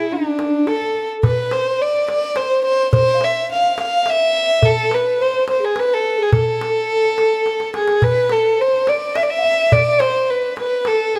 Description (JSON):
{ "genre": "Arabic maqam ensemble", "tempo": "106 BPM", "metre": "3/4", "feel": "straight", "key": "A maqam nahawand, E maqam hijaz from 8.0 s", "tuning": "A4 = 441 Hz", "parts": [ { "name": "dark violin", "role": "melody", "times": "0.0-11.2 s", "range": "D4 to F5", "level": "-19 LUFS", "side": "equal", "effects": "tape echo" }, { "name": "breathy mellow round clay ocarina", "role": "second line", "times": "0.0-11.2 s", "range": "D4 to F5+28c", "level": "-23 LUFS", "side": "equal", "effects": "none" }, { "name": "darbuka", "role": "percussion", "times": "0.1-11.2 s", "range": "none", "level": "-23 LUFS", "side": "equal", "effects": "none" } ], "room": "wet studio ambience, RT60 0.5 s", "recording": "none", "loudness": "-17 LUFS", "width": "mono", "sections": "0.0-8.0 A section; 8.0-11.2 B section", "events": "drum fill 7.5-8.0", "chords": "none", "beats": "0.11 0.68 | 1.24 1.81 2.37 | 2.94 3.50 4.07 | 4.63 5.20 5.76 | 6.33 6.89 7.46 | 8.03 8.59 9.16 | 9.72 10.29 10.86" }